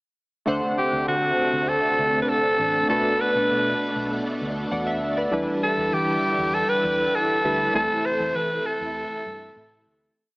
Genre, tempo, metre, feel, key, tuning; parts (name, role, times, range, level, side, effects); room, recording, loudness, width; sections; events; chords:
pop; 99 BPM; 4/4; straight; A4 = 436 Hz
chorused retro synth keys; accompaniment; 0.5-10.2 s; B2 to F#5; -27 LUFS; equal; tremolo
string machine, violins; sustained chords; 0.5-10.1 s; B2 to E4; -29 LUFS; equal; ensemble chorus
vintage muted fingered electric bass; bass; 0.5-10.1 s; A1 to E3; -35 LUFS; equal
raspy alto saxophone; melody; 0.8-9.9 s; F#4 to C5; -22 LUFS; equal; tape echo
moderate lush hall reverb, RT60 2.9 s; AM radio sound; -20 LUFS; side -27 dB against mid
0.5-10.2 pre-chorus
fade-out 7.7-10.2
0.5 D7; 2.9 Bm7; 5.3 Em7; 7.7 Am/E